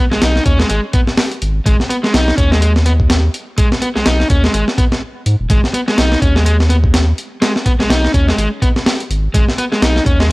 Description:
breakbeat, breaks; 125 BPM; 4/4; swing 58% on 16ths; A4 = 444 Hz
crunchy overdriven guitar; riff; 0.0-10.3 s; Ab3 to Eb4; -18 LUFS; equal; analog delay
saturated sub bass; bass; 0.1-10.3 s; Eb1 to Ab2; -14 LUFS; equal; tube saturation
breakbeat sampler-style drum kit; drums; 0.1-10.3 s; hi-hat, kick drum, snare drum; -14 LUFS; equal; studio reverb
little or no reverb; dry, gritty hardware recording, cassette tape; -12 LUFS; side -22 dB against mid
0.0-10.3 A section
0.0 Abm
0.22 0.70 1.18 | 1.66 2.14 2.62 3.10 | 3.58 4.06 4.54 5.02 | 5.50 5.98 6.46 6.94 | 7.42 7.90 8.38 8.86 | 9.34 9.82 10.30

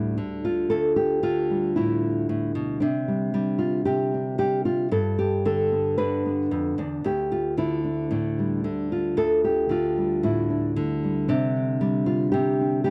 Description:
folk, solo fingerstyle acoustic guitar; 114 BPM; 4/4; straight; A4 = 440 Hz
nylon-string guitar; solo; 0.0-12.9 s; D2 to B4; -24 LUFS; equal; tape echo
little or no reverb; dry, close 1970s-style studio recording; -24 LUFS; mono
0.0-12.9 A section
0.0 Dmadd9; 2.8 Csus2; 4.9 Gadd9; 7.0 Dmadd9; 11.3 Csus2
0.17 | 0.70 1.23 1.76 2.28 | 2.81 3.33 3.86 4.39 | 4.92 5.45 5.98 6.51 | 7.04 7.58 8.11 8.64 | 9.17 9.70 10.22 10.75 | 11.27 11.80 12.33 12.85

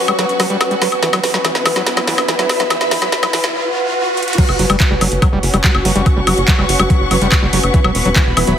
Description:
psychedelic trance; 143 BPM; 4/4; straight; A4 = 442 Hz
swarming drone; sustained chords; 0.0-8.6 s; B4; -21 LUFS; equal; built-in reverb, sidechain pumping
riser and swell; sound effects; 0.3-4.4 s; -24 LUFS; right 1 dB
warm symphonic string section; texture; 0.0-8.6 s; B3 to C#6; -21 LUFS; equal; sidechain pumping
overdriven acid bass; riff; 0.1-8.5 s; E3 to G3; -21 LUFS; equal; distortion, auto-pan, sidechain pumping, dub echo
garage drum kit; drums; 0.1-8.6 s; crash cymbal, handclaps, hi-hat, snare drum, woodblock; -17 LUFS; left 1 dB; overdrive, high-pass filter on snare, high-pass filter on hats, high-pass filter on perc, high-pass filter on cymbals
electronic kick drum; drums; 4.4-8.2 s; -13 LUFS; equal; overdrive
tight sequencer bass; bass; 4.5-8.5 s; E1 to F#1; -18 LUFS; equal
moderate lush hall reverb, RT60 1.8 s, digital ambience; heavily compressed radio sound, high-pass filter; -12 LUFS; side -9 dB against mid
0.0-4.4 A section; 4.4-8.6 B section
build-up 0.0-4.4; drum fill 0.0-3.5, 4.2; filter sweep on synth drone 0.0-4.4; riser 0.3-4.4; swell 3.5-4.4; drop 4.4-8.6
0.0 F#5; 1.0 E5; 4.4 F#5; 7.7 E5
0.19 0.61 | 1.03 1.45 1.86 2.29 | 2.70 3.12 3.54 3.96 | 4.38 4.80 5.22 5.64 | 6.06 6.48 6.90 7.32 | 7.74 8.16 8.58

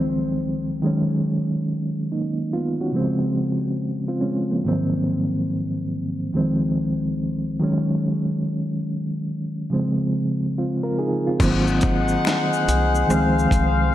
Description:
lo-fi hip hop; 71 BPM; 4/4; swing 64% on 16ths; Db major; A4 = 439 Hz
mellow reed electric piano; accompaniment; 0.0-13.9 s; Db2 to Bb4; -21 LUFS; equal; fast tremolo, cassette tape, low-pass filter
warm brass ensemble; sustained chords; 11.4-13.9 s; C4 to Gb5; -22 LUFS; left 3 dB; low-pass filter
upright bass; bass; 11.4-13.9 s; Ab1 to Db2; -23 LUFS; equal
dusty soul sampler-style drum kit; drums; 11.4-13.8 s; crash cymbal, hi-hat, kick drum, shaker, snare drum; -24 LUFS; left 1 dB; overdrive
finger snap; percussion; 12.2-12.5 s; barely audible
moderate plate reverb, RT60 2.8 s; -20 LUFS; side -13 dB against mid
0.0-11.4 A section; 11.4-13.9 B section
0.0 Dbmaj7; 0.8 Ebm11; 2.9 Dbmaj7; 4.6 Ab7; 6.3 Dbmaj7; 7.6 Ebmadd11; 9.7 Dbmaj13; 11.4 Ab7; 13.1 Dbmaj7
0.41 | 1.26 2.10 2.95 3.79 | 4.64 5.48 6.33 7.17 | 8.02 8.86 9.71 10.55 | 11.40 12.24 13.09 13.93

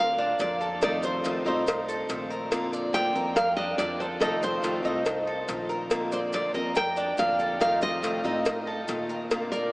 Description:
latin, Cuban son and guajira; 141 BPM; 4/4; straight; Bb major; A4 = 440 Hz
nylon-string guitar; melody; 0.0-9.7 s; A4 to G5; -28 LUFS; equal
Cuban tres; arpeggios; 0.0-9.7 s; D4 to D5; -31 LUFS; equal
upright bass; bass; 0.0-9.7 s; Bb1 to Bb2; -42 LUFS; equal
picked steel-string acoustic guitar; accompaniment; 0.4-9.7 s; C3 to F4; -32 LUFS; left 1 dB
cowbell; percussion; 0.4-9.5 s; -32 LUFS; left 1 dB
maracas; percussion; 0.4-9.7 s; -48 LUFS; right 1 dB
wet huge ambient reverb, RT60 8.2 s; in a vast, echoing space, small speaker sound; -24 LUFS; side -22 dB against mid
0.0-9.7 A section
0.0 Bbadd9; 0.8 F7; 2.5 Bbadd9; 4.2 F7; 5.9 Bbadd9; 7.6 F7
0.39 | 0.81 1.24 1.66 2.09 | 2.51 2.94 3.36 3.79 | 4.21 4.64 5.06 5.49 | 5.91 6.33 6.76 7.18 | 7.61 8.03 8.46 8.88 | 9.30

